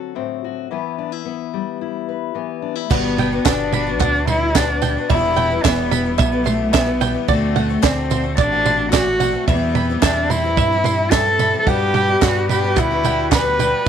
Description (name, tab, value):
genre	indie folk with a building arrangement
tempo	110 BPM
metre	4/4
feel	straight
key	G major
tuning	A4 = 440 Hz
part	fingerpicked steel-string acoustic guitar	accompaniment	0.0-2.9 s	A2 to B4	-24 LUFS	left 14 dB	none
part	warm cello	melody	2.8-13.9 s	A3 to B4	-19 LUFS	equal	none
part	picked twelve-string acoustic guitar	accompaniment	2.9-13.9 s	E2 to F#4	-24 LUFS	left 13 dB	none
part	bluegrass banjo	arpeggios	2.9-13.9 s	D5 to C6	-25 LUFS	right 10 dB	none
part	fingered electric bass	bass	2.9-13.9 s	E1 to G2	-24 LUFS	equal	none
part	compact cocktail drum kit	drums	2.9-13.9 s	crash cymbal, kick drum, snare drum, toms	-20 LUFS	right 4 dB	none
part	tambourine	percussion	3.2-13.7 s	none	-32 LUFS	right 18 dB	none
part	group handclap	percussion	3.5-13.4 s	none	-28 LUFS	left 15 dB	none
part	pipe organ, soft reed	sustained chords	11.6-13.9 s	G3 to B4	-28 LUFS	right 4 dB	none
room	light reverb, small room ambience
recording	1960s-style stereo with parts hard left and right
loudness	-16 LUFS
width	side -8 dB against mid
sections	0.0-2.9 A section; 2.9-13.9 B section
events	none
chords	0.0 D7; 0.7 Em7; 2.9 Gmaj7; 5.1 Em; 7.3 D7; 9.5 Cmaj7/E; 11.7 Gmaj7